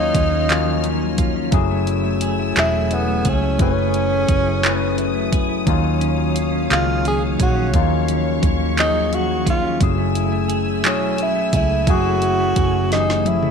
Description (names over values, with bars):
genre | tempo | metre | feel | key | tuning
slow six-eight R&B | 58 BPM (dotted quarters) | 6/8 | straight | unclear | A4 = 440 Hz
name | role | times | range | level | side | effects
warm tenor saxophone | melody | 0.0-13.5 s | Cb4 to Ab4 | -21 LUFS | right 2 dB | slapback echo
clean electric guitar | second line | 0.0-13.5 s | Eb3 to Ab4 | -26 LUFS | right 16 dB | tremolo
barky tine electric piano | accompaniment | 0.0-13.5 s | Fb3 to Cb5 | -22 LUFS | left 14 dB | overdrive, wide subtle chorus
rich studio string section | sustained chords | 0.0-13.5 s | A3 to F6 | -30 LUFS | left 1 dB | none
vintage muted fingered electric bass | bass | 0.0-13.5 s | Fb1 to Eb2 | -23 LUFS | right 1 dB | none
smooth R&B drum kit | drums | 0.1-13.5 s | handclaps, hi-hat, kick drum, snare drum, toms | -20 LUFS | right 1 dB | none
room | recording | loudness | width
light reverb, digital ambience | 1960s-style stereo with parts hard left and right | -16 LUFS | side -6 dB against mid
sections
0.0-13.5 A section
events
drum fill 12.9-13.5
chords
0.0 Ebm9; 1.5 Gbm9; 5.7 Ebm9; 9.8 Gbm9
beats
0.50 | 1.53 2.56 | 3.60 4.63 | 5.67 6.70 | 7.74 8.77 | 9.81 10.84 | 11.88 12.91